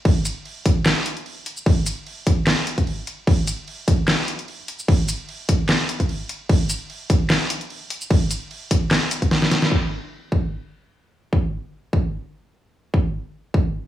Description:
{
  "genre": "dubstep",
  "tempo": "149 BPM",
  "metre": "4/4",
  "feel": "swing 54% on 16ths, half-time",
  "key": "none",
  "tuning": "none",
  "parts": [
    { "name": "dubstep drum kit", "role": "drums", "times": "0.1-9.8 s", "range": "crash cymbal, handclaps, hi-hat, shaker, snare drum", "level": "-22 LUFS", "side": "equal", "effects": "low-pass filter on snare, low-pass filter on cymbals, low-pass filter on hats, low-pass filter on toms, low-pass filter on perc, low-pass filter on room" },
    { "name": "electronic kick drum", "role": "drums", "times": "0.1-13.6 s", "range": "none", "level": "-18 LUFS", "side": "equal", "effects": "none" }
  ],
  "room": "little or no reverb",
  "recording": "small room ambience",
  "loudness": "-19 LUFS",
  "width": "side -13 dB against mid",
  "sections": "0.0-9.7 A section; 9.7-13.9 B section",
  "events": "drop 0.0-9.7; kick drops out 9.3-9.7; drum fill 9.3-9.7; band accent 9.6",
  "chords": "none",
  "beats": "| 0.05 0.45 0.86 1.26 | 1.66 2.06 2.47 2.87 | 3.27 3.68 4.08 4.48 | 4.88 5.29 5.69 6.09 | 6.49 6.90 7.30 7.70 | 8.11 8.51 8.91 9.31 | 9.72 10.12 10.52 10.92 | 11.33 11.73 12.13 12.54 | 12.94 13.34"
}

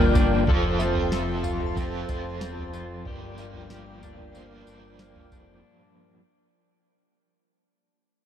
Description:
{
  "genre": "dream pop",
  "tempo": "93 BPM",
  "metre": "4/4",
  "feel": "straight",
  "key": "G dorian",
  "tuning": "A4 = 439 Hz",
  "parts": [
    { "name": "crunchy overdriven guitar", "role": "accompaniment", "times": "0.0-6.2 s", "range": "G2 to A4", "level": "-30 LUFS", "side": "right 1 dB", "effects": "tremolo, lush chorus" },
    { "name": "mellow tonewheel organ", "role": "sustained chords", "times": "0.0-5.6 s", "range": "F4 to A5", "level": "-32 LUFS", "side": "right 1 dB", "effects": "chorus vibrato, wide subtle chorus" },
    { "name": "electric guitar at the edge of break-up", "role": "arpeggios", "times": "0.0-6.2 s", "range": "G2 to A4", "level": "-31 LUFS", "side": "left 5 dB", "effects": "wide subtle chorus, ping-pong delay" },
    { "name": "fat analog bass", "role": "bass", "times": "0.0-5.6 s", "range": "E1 to G1", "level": "-31 LUFS", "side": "equal", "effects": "none" },
    { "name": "shimmering bell with halo", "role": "texture", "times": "0.0-5.5 s", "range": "C5 to A5", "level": "-40 LUFS", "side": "left 1 dB", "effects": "ensemble chorus, ping-pong delay" },
    { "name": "soft vintage rhythm box", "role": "drums", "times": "0.2-5.5 s", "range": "kick drum, snare drum, tambourine, toms", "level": "-26 LUFS", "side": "right 1 dB", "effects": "overdrive" }
  ],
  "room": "light reverb",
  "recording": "dark, warm production",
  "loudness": "-23 LUFS",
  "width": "side -10 dB against mid",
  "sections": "0.0-5.6 A section",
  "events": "fade-out 0.0-5.6",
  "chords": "0.5 F; 3.1 Gm7",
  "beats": "| 0.48 1.13 1.77 2.42 | 3.06 3.71 4.35 5.00"
}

